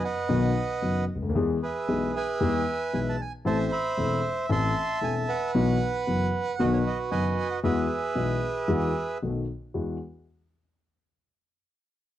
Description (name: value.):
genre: tango.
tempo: 114 BPM.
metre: 4/4.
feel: rubato.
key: E major.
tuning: A4 = 437 Hz.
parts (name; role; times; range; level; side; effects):
bandoneon; melody; 0.0-9.2 s; F#4 to C6; -28 LUFS; right 3 dB; none.
dark concert grand piano; accompaniment; 0.3-10.0 s; E1 to A4; -26 LUFS; left 2 dB; none.
room: moderate studio reverb, RT60 0.8 s.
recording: worn, warbling old tape, cassette tape, warbly pitch drift.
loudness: -24 LUFS.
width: side -12 dB against mid.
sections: 0.0-9.7 A section; 9.7-11.8 B section.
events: none.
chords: 0.0 B; 1.3 E; 3.4 Am; 5.5 Bsus4; 6.6 B; 7.6 Eadd9; 9.2 B7; 9.7 Eadd9.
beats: 0.29 0.81 | 1.34 1.87 2.40 2.92 | 3.44 3.97 4.49 5.02 | 5.54 6.06 6.58 7.11 | 7.63 8.15 8.68 9.21 | 9.74.